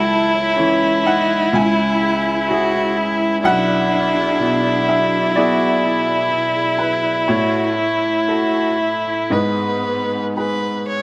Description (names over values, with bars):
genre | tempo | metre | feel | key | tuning
neoclassical piano and strings | 57-63 BPM | 4/4 | rubato | unclear | A4 = 440 Hz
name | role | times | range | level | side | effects
warm violin | melody | 0.0-11.0 s | E4 to C#5 | -20 LUFS | equal | slapback echo, plate reverb
warm cello | second line | 0.0-10.9 s | B3 to F#4 | -28 LUFS | equal | none
bright upright piano | accompaniment | 0.0-11.0 s | B1 to A5 | -23 LUFS | equal | none
concert harp | arpeggios | 0.0-11.0 s | B3 to A5 | -32 LUFS | equal | slapback echo
room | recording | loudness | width
moderate studio reverb, RT60 0.9 s | none | -18 LUFS | mono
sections
0.0-11.0 A section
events
none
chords
0.0 A/C#; 1.5 C#m7; 3.4 E7/B; 7.3 A; 9.3 G#m